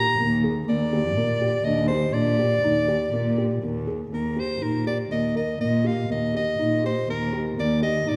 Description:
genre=contemporary instrumental, chamber music in an uneven meter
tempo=122 BPM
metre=7/4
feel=straight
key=Eb major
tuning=A4 = 440 Hz
part: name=clear soprano saxophone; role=melody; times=0.0-8.2 s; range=Bb4 to Bb5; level=-28 LUFS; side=equal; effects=none
part: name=felt-muted upright piano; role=arpeggios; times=0.0-8.2 s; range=Bb3 to Bb4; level=-29 LUFS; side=equal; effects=none
part: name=dark cello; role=bass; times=0.0-8.2 s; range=Eb2 to Bb2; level=-28 LUFS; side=equal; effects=none
room=wet scoring stage reverb, RT60 2.0 s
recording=recorded in a church or concert hall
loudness=-24 LUFS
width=mono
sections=0.0-4.1 A section; 4.1-8.2 B section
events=none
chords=0.0 Ebmaj7; 4.1 Eb

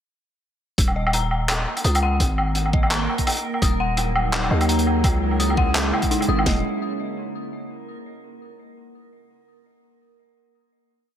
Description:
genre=half-time drum and bass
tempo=169 BPM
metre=4/4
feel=swing 57% on 16ths, half-time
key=Eb phrygian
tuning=A4 = 440 Hz
part: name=growling 808-style bass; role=bass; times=0.8-6.6 s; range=Eb1 to Eb2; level=-22 LUFS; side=equal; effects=none
part: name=crunchy breakbeat drum kit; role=drums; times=0.8-6.4 s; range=handclaps, hi-hat, woodblock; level=-24 LUFS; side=equal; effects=none
part: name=drum and bass drum kit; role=drums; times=0.8-6.6 s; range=kick drum, snare drum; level=-21 LUFS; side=equal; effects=none
part: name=backwards swelling texture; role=texture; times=1.7-6.5 s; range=Bb3 to Bb4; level=-30 LUFS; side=right 3 dB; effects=built-in reverb
part: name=dark detuned synth bell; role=arpeggios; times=1.0-6.6 s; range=Eb4 to Eb6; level=-29 LUFS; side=left 5 dB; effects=chorus, tape echo
part: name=bowed-like drone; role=sustained chords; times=4.0-6.6 s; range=Db3 to Fb4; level=-28 LUFS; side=right 2 dB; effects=built-in reverb, sidechain pumping
room=light reverb, small room ambience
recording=none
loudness=-19 LUFS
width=side -10 dB against mid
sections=0.8-6.5 drop; 6.5-7.9 final chord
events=drop 0.8-6.5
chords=0.8 Ebm7; 2.2 Ab5; 3.6 Ebm7; 5.0 Dbm; 6.5 Ebm7

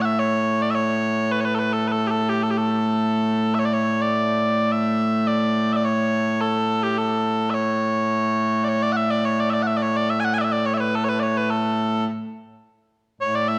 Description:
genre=scottish traditional, Scottish pipe music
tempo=106 BPM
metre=4/4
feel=straight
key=A major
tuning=A4 = 442 Hz
part: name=mellow small bagpipes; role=solo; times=0.0-13.6 s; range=A2 to G#5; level=-22 LUFS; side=equal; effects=none
room=wet recital hall reverb, RT60 1.3 s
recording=dark, warm production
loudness=-22 LUFS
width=mono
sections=0.0-13.6 A section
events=none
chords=none

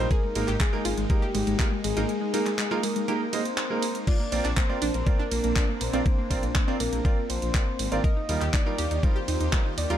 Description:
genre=progressive house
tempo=121 BPM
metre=4/4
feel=straight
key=unclear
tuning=A4 = 439 Hz
part: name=supersaw pad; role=sustained chords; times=0.0-10.0 s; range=Eb3 to G4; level=-34 LUFS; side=equal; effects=phaser, sidechain pumping
part: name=bright baby grand piano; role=stabs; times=0.0-10.0 s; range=G3 to Eb5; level=-32 LUFS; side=right 4 dB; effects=sidechain pumping, tape echo
part: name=dark detuned saw bass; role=bass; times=0.0-10.0 s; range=Ab1 to Eb2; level=-29 LUFS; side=equal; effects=sidechain pumping
part: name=soft octave-layered synth lead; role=melody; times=0.1-10.0 s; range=G4 to Eb5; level=-33 LUFS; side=left 2 dB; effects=chorus, sidechain pumping, tape echo
part: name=analog pluck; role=arpeggios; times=0.1-10.0 s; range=Ab3 to Bb4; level=-32 LUFS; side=equal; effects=chorus, sidechain pumping, tape echo
part: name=electronic kick drum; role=drums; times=0.1-9.6 s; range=none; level=-24 LUFS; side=equal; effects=none
part: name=house drum kit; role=drums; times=0.1-10.0 s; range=crash cymbal, handclaps, hi-hat, ride cymbal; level=-33 LUFS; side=right 1 dB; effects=none
room=little or no reverb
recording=dark, warm production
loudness=-23 LUFS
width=side -10 dB against mid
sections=0.0-10.0 A section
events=none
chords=0.1 Absus2; 4.1 Bbadd9; 8.0 Ebadd9

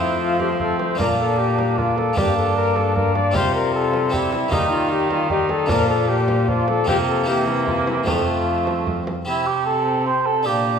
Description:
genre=classical, renaissance-style consort dance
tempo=152 BPM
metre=3/4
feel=straight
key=unclear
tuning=A4 = 437 Hz
part: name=mellow cornet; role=melody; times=0.0-10.8 s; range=Eb4 to G5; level=-24 LUFS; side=left 6 dB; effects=none
part: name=mellow cor anglais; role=second line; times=0.0-10.8 s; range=A3 to C5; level=-24 LUFS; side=right 5 dB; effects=none
part: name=harpsichord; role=accompaniment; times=0.0-10.8 s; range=F2 to G4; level=-26 LUFS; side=equal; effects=none
part: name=mellow bassoon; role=accompaniment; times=0.0-10.8 s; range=E3 to D4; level=-27 LUFS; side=left 3 dB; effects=none
part: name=rich cello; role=bass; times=0.0-10.8 s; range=F2 to F3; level=-24 LUFS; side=equal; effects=none
part: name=frame drum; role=percussion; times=0.4-9.3 s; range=none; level=-28 LUFS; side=right 2 dB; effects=none
room=wet recital hall reverb, RT60 1.6 s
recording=minimal, uncompressed stereo recording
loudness=-17 LUFS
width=side -7 dB against mid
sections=0.0-9.3 A section; 9.3-10.8 B section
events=none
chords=0.0 F; 1.0 Bb; 2.2 Gm; 3.3 Csus4; 4.1 C; 4.5 Eb; 5.7 Bb; 6.9 C7sus4; 7.3 C7; 8.1 F; 9.3 C5

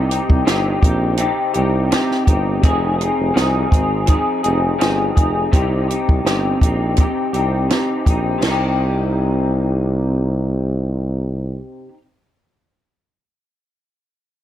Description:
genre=indie pop, bedroom pop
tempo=83 BPM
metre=4/4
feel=swing 55% on 16ths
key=C minor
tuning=A4 = 440 Hz
part: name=electric guitar through a small old amp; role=accompaniment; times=0.0-12.0 s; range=C3 to Ab4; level=-20 LUFS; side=left 1 dB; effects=analog chorus, warbly pitch drift
part: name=warm tuba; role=bass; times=0.0-11.6 s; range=F1 to C2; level=-19 LUFS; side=equal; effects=none
part: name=compact cocktail drum kit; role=drums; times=0.1-8.6 s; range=crash cymbal, hi-hat, kick drum, snare drum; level=-16 LUFS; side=equal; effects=none
room=moderate small room reverb, RT60 0.6 s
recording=dark, warm production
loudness=-15 LUFS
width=side -12 dB against mid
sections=0.0-8.4 A section; 8.4-11.3 B section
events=none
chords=0.0 Cm; 2.6 Fm7; 5.5 Cm

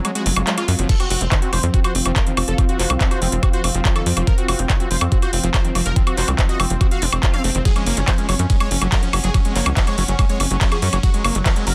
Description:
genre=psychedelic trance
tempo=142 BPM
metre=4/4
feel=straight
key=unclear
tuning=A4 = 439 Hz
part: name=unison lead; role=melody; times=0.0-11.7 s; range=Gb3 to F5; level=-30 LUFS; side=equal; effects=phaser, sidechain pumping, digital delay
part: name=swarming drone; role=sustained chords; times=0.0-11.7 s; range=F3 to C4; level=-33 LUFS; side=equal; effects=built-in reverb, vintage 12-bit sampler grit, sidechain pumping
part: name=overdriven acid bass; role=riff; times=0.0-11.7 s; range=Eb3 to Gb4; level=-29 LUFS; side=equal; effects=distortion, sidechain pumping, digital delay
part: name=drum and bass drum kit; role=drums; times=0.0-11.7 s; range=crash cymbal, handclaps, hi-hat, ride cymbal, woodblock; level=-25 LUFS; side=equal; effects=none
part: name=swell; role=sound effects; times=0.2-0.9 s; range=none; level=-36 LUFS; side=equal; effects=none
part: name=ethereal airy pad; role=texture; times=0.8-11.7 s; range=F4 to Db6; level=-34 LUFS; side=equal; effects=ensemble chorus, built-in reverb, sidechain pumping
part: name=tight sequencer bass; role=bass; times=0.3-11.7 s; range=F1 to Gb2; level=-23 LUFS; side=equal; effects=none
part: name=electronic kick drum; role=drums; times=0.9-11.5 s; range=none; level=-20 LUFS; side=equal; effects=none
room=digital ambience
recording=dense, heavily limited modern master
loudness=-18 LUFS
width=mono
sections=0.0-11.7 A section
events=break 0.0-0.9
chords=0.0 Gb5; 0.9 F5; 7.7 Gb5

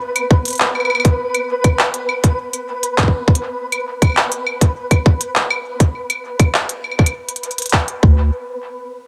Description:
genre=IDM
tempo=101 BPM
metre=4/4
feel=straight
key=unclear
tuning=A4 = 440 Hz
part: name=flickering grainy texture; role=texture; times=0.0-8.3 s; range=B4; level=-26 LUFS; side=equal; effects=built-in reverb
part: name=organic electronic drum kit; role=drums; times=0.2-8.0 s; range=claves, handclaps, hi-hat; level=-20 LUFS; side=equal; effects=tape echo
part: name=electronic kick drum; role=drums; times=0.3-8.1 s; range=none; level=-14 LUFS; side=equal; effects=none
part: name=round analog bass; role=bass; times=8.0-8.3 s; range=D2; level=-16 LUFS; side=equal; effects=none
room=light reverb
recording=none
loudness=-17 LUFS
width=mono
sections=0.0-8.3 A section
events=none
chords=0.0 N.C.; 8.0 Bm/D; 8.3 N.C.

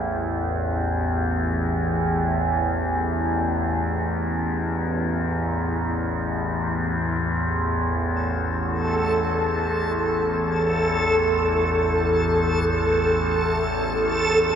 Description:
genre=dark ambient drone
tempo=free time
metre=none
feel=none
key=unclear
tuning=A4 = 440 Hz
part: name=overtone-sweeping drone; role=drone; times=0.0-14.6 s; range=A1 to E2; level=-22 LUFS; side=equal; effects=chorus, built-in reverb, phaser
part: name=backwards swelling texture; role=texture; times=8.4-14.6 s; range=A4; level=-22 LUFS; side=equal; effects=built-in reverb
room=wet huge ambient reverb, RT60 8.3 s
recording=none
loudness=-21 LUFS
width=side -8 dB against mid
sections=0.0-14.6 A section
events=none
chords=0.0 A5

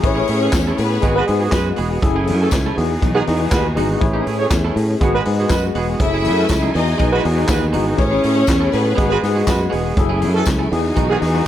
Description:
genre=disco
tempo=121 BPM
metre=4/4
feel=straight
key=unclear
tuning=A4 = 436 Hz
part: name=clear studio string section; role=second line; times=0.0-1.2, 6.0-9.2 s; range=B3 to E5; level=-20 LUFS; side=left 2 dB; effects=analog delay
part: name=tine electric piano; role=accompaniment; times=0.0-11.5 s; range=E3 to F#6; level=-22 LUFS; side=left 4 dB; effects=overdrive, fast stereo tremolo
part: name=twangy electric guitar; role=accompaniment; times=0.0-11.5 s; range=G#3 to A4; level=-27 LUFS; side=right 7 dB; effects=none
part: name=clear studio string section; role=sustained chords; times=0.0-11.5 s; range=E3 to G#5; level=-25 LUFS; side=equal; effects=none
part: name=fingered electric bass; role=bass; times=0.0-11.4 s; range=E1 to A2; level=-20 LUFS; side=equal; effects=none
part: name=vintage drum kit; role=drums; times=0.0-11.3 s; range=handclaps, hi-hat, kick drum, snare drum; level=-22 LUFS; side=equal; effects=none
part: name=mellow horn section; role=stabs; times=0.4-11.2 s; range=D#3 to C#5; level=-21 LUFS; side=right 4 dB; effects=tube saturation
part: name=tambourine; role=percussion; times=0.5-10.6 s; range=none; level=-32 LUFS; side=left 14 dB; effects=none
room=light reverb, studio ambience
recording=none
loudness=-15 LUFS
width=side -11 dB against mid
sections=0.0-11.5 A section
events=none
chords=0.0 Amaj7; 1.0 G#m7; 2.0 F#m9; 2.8 Emaj9; 4.0 Amaj7; 5.0 G#m7; 6.0 F#m9; 6.7 Emaj9; 8.0 Amaj7; 9.0 G#m7; 10.0 F#m9; 10.7 Emaj9

